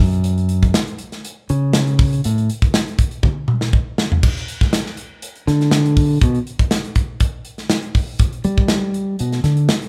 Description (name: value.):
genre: electric jazz fusion.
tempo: 121 BPM.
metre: 4/4.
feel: straight.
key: G lydian.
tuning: A4 = 440 Hz.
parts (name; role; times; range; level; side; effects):
modern bright fingered electric bass; bass; 0.0-2.5, 5.5-9.7 s; F#2 to G3; -19 LUFS; equal; none.
modern studio drum kit; drums; 0.1-9.9 s; crash cymbal, hi-hat, kick drum, snare drum, toms; -20 LUFS; equal; none.
room: light reverb.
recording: band playing live in one room.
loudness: -18 LUFS.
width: mono.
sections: 0.0-4.2 A section; 4.2-9.9 A section.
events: fingered electric bass solo 0.0-9.9; drum fill 3.2-4.2.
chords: none.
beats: | 0.25 0.75 1.24 1.74 | 2.24 2.73 3.23 3.73 | 4.22 4.72 5.22 5.71 | 6.21 6.71 7.21 7.70 | 8.20 8.70 9.19 9.69.